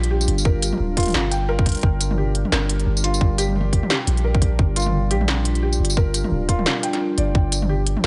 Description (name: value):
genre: half-time drum and bass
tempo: 174 BPM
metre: 4/4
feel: swing 58% on 16ths, half-time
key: G minor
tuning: A4 = 440 Hz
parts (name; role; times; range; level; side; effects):
- deep dark ambient pad; sustained chords; 0.0-8.1 s; G3 to G4; -30 LUFS; equal; chorus, built-in reverb, sidechain pumping
- felt-muted upright piano; arpeggios; 0.0-8.1 s; F4 to G5; -29 LUFS; equal; tape echo
- long sustained 808-style bass; bass; 0.0-8.1 s; D1 to Bb1; -24 LUFS; equal; none
- industrial drum kit; drums; 0.0-8.1 s; hi-hat, snare drum, tambourine, toms; -26 LUFS; equal; none
- electronic kick drum; drums; 0.5-7.4 s; none; -20 LUFS; equal; overdrive
room: light reverb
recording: nothing above 10.9 kHz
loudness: -20 LUFS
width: mono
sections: 0.0-8.1 A section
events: kick drops out 7.0-7.3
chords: 0.0 Gm